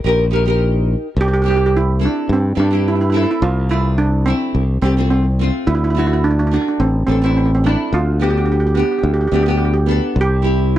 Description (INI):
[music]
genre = calypso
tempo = 107 BPM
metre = 4/4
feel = straight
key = C major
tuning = A4 = 441 Hz
[part]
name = nylon-string guitar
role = accompaniment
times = 0.0-10.8 s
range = A3 to Bb4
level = -21 LUFS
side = left 1 dB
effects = double-tracked left and right
[part]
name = modern bright fingered electric bass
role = bass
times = 0.0-10.8 s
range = A1 to G2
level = -16 LUFS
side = left 1 dB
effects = none
[part]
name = steel pan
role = melody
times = 1.2-10.8 s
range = C4 to G4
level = -18 LUFS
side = right 3 dB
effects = none
[sound]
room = small room ambience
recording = dry, close 1970s-style studio recording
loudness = -14 LUFS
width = side -12 dB against mid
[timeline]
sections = 0.0-1.2 A section; 1.2-10.8 B section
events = none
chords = 0.0 Eb; 1.2 C; 3.4 Fmaj7/C; 5.7 D; 7.9 G/D; 10.2 C